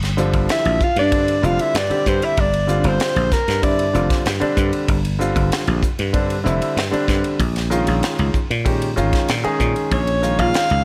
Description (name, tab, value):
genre	electric jazz fusion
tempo	96 BPM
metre	4/4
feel	straight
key	unclear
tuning	A4 = 439 Hz
part	dry thumbed slap bass	bass	0.0-10.8 s	F1 to Bb2	-23 LUFS	equal	none
part	crisp fusion drum kit	drums	0.0-10.8 s	hi-hat, kick drum, ride cymbal, snare drum	-25 LUFS	equal	none
part	warm concert grand piano	accompaniment	0.2-10.8 s	D3 to Ab4	-25 LUFS	equal	none
part	warm soprano saxophone	melody	0.5-4.2, 9.9-10.8 s	Bb4 to F5	-22 LUFS	equal	none
part	hollow-body jazz guitar	second line	0.5-4.2, 9.9-10.8 s	Bb3 to F4	-28 LUFS	equal	none
room	light reverb, studio reverb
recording	none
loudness	-19 LUFS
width	mono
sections	0.0-10.8 A section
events	none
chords	0.0 G7(no3); 7.4 Bbm7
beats	0.49 1.12 1.75 | 2.38 3.00 3.63 4.26 | 4.89 5.51 6.14 6.77 | 7.40 8.03 8.65 9.28 | 9.91 10.54